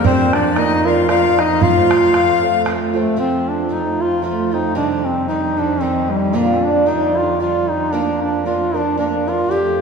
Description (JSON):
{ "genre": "celtic folk, Celtic waltz", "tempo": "114 BPM", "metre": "3/4", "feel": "swing 56% on 8ths", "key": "F mixolydian", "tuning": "A4 = 440 Hz", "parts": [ { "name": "warm duduk", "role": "melody", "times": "0.0-9.8 s", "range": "G3 to G4", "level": "-17 LUFS", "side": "equal", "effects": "none" }, { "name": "accordion", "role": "second line", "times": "0.0-2.6 s", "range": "C5 to F5", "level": "-20 LUFS", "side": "left 8 dB", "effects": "light tremolo tuning" }, { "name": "picked twelve-string acoustic guitar", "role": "accompaniment", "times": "0.0-9.8 s", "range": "Bb2 to Bb4", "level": "-20 LUFS", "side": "right 3 dB", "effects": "none" }, { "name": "muted cello", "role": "drone", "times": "0.0-9.8 s", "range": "F2", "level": "-25 LUFS", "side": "right 2 dB", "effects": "none" }, { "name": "bodhran", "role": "percussion", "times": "0.0-2.8 s", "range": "none", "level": "-21 LUFS", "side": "right 2 dB", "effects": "none" } ], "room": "wet church reverb, RT60 2.6 s", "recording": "recorded in a church or concert hall", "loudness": "-14 LUFS", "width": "side -5 dB against mid", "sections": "0.0-3.2 A section; 3.2-9.8 A section", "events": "none", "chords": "0.0 Bb; 1.6 F; 4.8 Cm; 6.3 Gm7; 7.9 Bb", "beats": "| 0.05 0.57 1.09 | 1.61 2.14 2.66 | 3.19 3.71 4.24 | 4.77 5.29 5.82 | 6.35 6.88 7.41 | 7.93 8.46 8.99 | 9.52" }